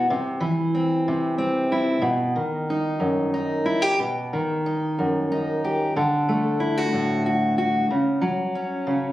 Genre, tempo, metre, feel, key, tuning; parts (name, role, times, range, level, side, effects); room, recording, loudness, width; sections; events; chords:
folk, solo fingerstyle acoustic guitar; 62 BPM (dotted quarters); 6/8; straight; A4 = 440 Hz
fingerpicked steel-string acoustic guitar; solo; 0.0-9.1 s; F#2 to G4; -21 LUFS; equal
light reverb; recorded on a phone in the room, studio reverb; -21 LUFS; side -14 dB against mid
0.0-9.1 A section
0.1 C; 2.0 B; 6.0 D; 7.9 F#5/C#